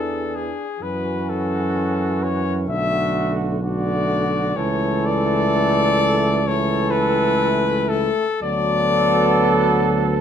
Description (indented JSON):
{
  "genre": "classical, hymn-like piece for brass band",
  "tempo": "64 BPM",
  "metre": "4/4",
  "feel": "rubato",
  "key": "A major",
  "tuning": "A4 = 437 Hz",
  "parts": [
    { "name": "warm cornet", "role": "melody", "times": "0.0-10.0 s", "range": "G#4 to E5", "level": "-22 LUFS", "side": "left 4 dB", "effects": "none" },
    { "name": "warm flugelhorn", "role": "second line", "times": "0.0-10.2 s", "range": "F#4 to A4", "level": "-24 LUFS", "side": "right 5 dB", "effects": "none" },
    { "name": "clear trombone section", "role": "accompaniment", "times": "0.0-10.2 s", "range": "A3 to D4", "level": "-27 LUFS", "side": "left 2 dB", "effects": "none" },
    { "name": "warm euphonium", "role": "accompaniment", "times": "0.0-10.2 s", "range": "D3 to F#3", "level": "-26 LUFS", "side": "right 2 dB", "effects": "none" },
    { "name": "mellow tuba", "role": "bass", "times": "0.0-10.2 s", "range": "B1 to F#2", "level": "-24 LUFS", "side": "right 1 dB", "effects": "none" }
  ],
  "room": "wet stone room reverb, RT60 1.0 s",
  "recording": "none",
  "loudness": "-17 LUFS",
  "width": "side -8 dB against mid",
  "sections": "0.0-10.2 A section",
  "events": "none",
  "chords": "0.0 E7; 0.8 F#m7; 2.7 Bm7; 4.6 A/C#; 8.4 Bm7/D"
}